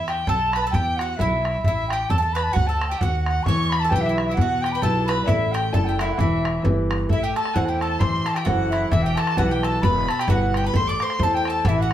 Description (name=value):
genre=celtic folk, Celtic polka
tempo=132 BPM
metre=2/4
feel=swing 57% on 8ths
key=E dorian, A dorian from 7.1 s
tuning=A4 = 439 Hz
part: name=wooden flute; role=melody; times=0.0-11.9 s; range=E5 to D6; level=-26 LUFS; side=equal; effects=none
part: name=bowl-back mandolin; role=second line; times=0.0-11.9 s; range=E4 to D5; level=-28 LUFS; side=right 4 dB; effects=none
part: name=dark fiddle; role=second line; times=0.0-11.9 s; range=D5 to D6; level=-30 LUFS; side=left 3 dB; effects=slapback echo
part: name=upright bass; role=bass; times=0.0-11.9 s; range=E1 to E2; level=-25 LUFS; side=equal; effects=none
part: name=bodhran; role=percussion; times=0.1-11.9 s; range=none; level=-26 LUFS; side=equal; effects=none
part: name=clear grand piano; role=accompaniment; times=3.5-11.9 s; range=B2 to D5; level=-25 LUFS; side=left 1 dB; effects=none
room=wet studio reverb, RT60 0.7 s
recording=heard from further back in the room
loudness=-19 LUFS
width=side -11 dB against mid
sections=0.0-7.1 A section; 7.1-11.9 B section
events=none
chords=0.0 E5; 1.6 A5; 2.6 D; 3.5 Em; 5.3 Asus4; 6.2 Em; 7.1 Am; 8.9 Em; 10.7 Am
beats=0.28 | 0.73 1.19 | 1.65 2.10 | 2.56 3.01 | 3.46 3.92 | 4.37 4.83 | 5.28 5.74 | 6.19 6.65 | 7.10 7.56 | 8.01 8.47 | 8.92 9.38 | 9.83 10.29 | 10.74 11.20 | 11.65